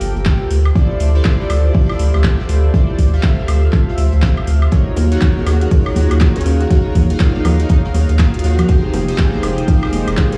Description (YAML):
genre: deep house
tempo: 121 BPM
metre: 4/4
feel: swing 60% on 16ths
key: unclear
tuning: A4 = 440 Hz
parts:
  - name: chorused polysynth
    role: stabs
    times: 0.0-10.4 s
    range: Eb4 to G5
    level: -25 LUFS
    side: equal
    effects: sidechain pumping, digital delay
  - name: rubbery square bass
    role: bass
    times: 0.0-10.3 s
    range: F1 to Eb2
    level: -16 LUFS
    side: equal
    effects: sidechain pumping
  - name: deep house drum kit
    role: drums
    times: 0.0-10.4 s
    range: handclaps, hi-hat, woodblock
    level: -30 LUFS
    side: equal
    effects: none
  - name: open jazz drum kit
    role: drums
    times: 0.0-10.4 s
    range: hi-hat, snare drum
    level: -42 LUFS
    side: equal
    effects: none
  - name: warbly tape-like pad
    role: texture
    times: 0.0-10.4 s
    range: G4 to G5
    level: -31 LUFS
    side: equal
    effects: chorus, built-in reverb, sidechain pumping
  - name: electronic kick drum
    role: drums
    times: 0.3-10.3 s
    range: none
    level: -15 LUFS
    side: equal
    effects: none
  - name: dark analog pad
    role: sustained chords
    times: 5.9-10.4 s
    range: Ab3 to Eb6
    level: -32 LUFS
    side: equal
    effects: chorus, sidechain pumping
  - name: bongos and congas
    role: percussion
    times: 5.0-10.4 s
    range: none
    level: -25 LUFS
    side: equal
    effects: none
  - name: plucky unison lead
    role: melody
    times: 5.1-8.7 s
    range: Db4 to Gb4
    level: -28 LUFS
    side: equal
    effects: ensemble chorus, vintage 12-bit sampler grit, dub echo
room: light reverb, small room ambience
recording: played on a big sound system in a bare room, large studio reverb, small room reverb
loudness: -14 LUFS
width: mono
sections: 0.0-10.4 A section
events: none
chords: 0.0 Gm9; 0.5 Dm9; 4.7 Ebm9; 8.7 Fm9